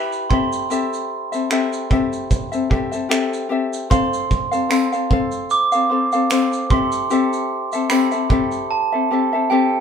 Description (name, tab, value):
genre	acoustic pop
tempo	75 BPM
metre	4/4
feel	swing 55% on 16ths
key	C major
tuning	A4 = 440 Hz
part	glockenspiel with hard plastic mallets	second line	0.0-9.8 s	G5 to D6	-22 LUFS	right 6 dB	none
part	ukulele	accompaniment	0.0-9.8 s	C4 to F5	-20 LUFS	left 4 dB	none
part	loose indie drum kit	drums	0.1-8.7 s	finger snaps, kick drum, shaker	-22 LUFS	right 1 dB	none
part	tambourine	percussion	4.7-8.1 s	none	-37 LUFS	right 5 dB	none
room	wet studio reverb, RT60 0.9 s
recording	band playing live in one room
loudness	-17 LUFS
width	side -7 dB against mid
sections	0.0-9.8 A section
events	none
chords	0.3 C6; 3.9 F; 6.7 Am7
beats	| 0.71 1.51 2.31 3.11 | 3.91 4.71 5.51 6.30 | 7.10 7.90 8.70 9.50